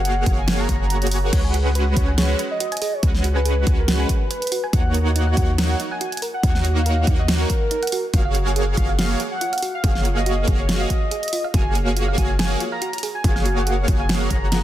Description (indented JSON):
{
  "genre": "future bass",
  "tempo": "141 BPM",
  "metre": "4/4",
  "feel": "swing 54% on 16ths, half-time",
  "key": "F# major",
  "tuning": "A4 = 443 Hz",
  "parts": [
    { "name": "warm velvety synth lead", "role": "melody", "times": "0.0-14.6 s", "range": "A#4 to A#5", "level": "-28 LUFS", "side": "equal", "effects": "chorus, sidechain pumping, tape echo" },
    { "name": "soft supersaw", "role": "riff", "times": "0.0-14.6 s", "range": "G#3 to F#5", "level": "-26 LUFS", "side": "right 2 dB", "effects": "sidechain pumping, tape echo" },
    { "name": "warm 808-style bass", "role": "bass", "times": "0.0-14.6 s", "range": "F#1 to D#2", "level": "-21 LUFS", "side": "equal", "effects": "sidechain pumping" },
    { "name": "pop drum kit", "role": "drums", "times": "0.1-14.6 s", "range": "crash cymbal, hi-hat, snare drum", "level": "-26 LUFS", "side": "right 1 dB", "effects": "none" },
    { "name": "electronic kick drum", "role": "drums", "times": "0.3-14.4 s", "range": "none", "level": "-20 LUFS", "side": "equal", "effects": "none" },
    { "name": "thumb-piano-like synth pluck", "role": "arpeggios", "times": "1.3-14.6 s", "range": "D#4 to G#5", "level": "-31 LUFS", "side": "right 4 dB", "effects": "chorus, sidechain pumping, tape echo" }
  ],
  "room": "light reverb, digital ambience",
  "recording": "dense, heavily limited modern master",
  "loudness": "-18 LUFS",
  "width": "side -13 dB against mid",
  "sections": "0.0-14.6 A section",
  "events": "none",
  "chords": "0.0 F#maj9; 1.3 C#7sus4; 4.7 D#m7; 8.1 F#maj9"
}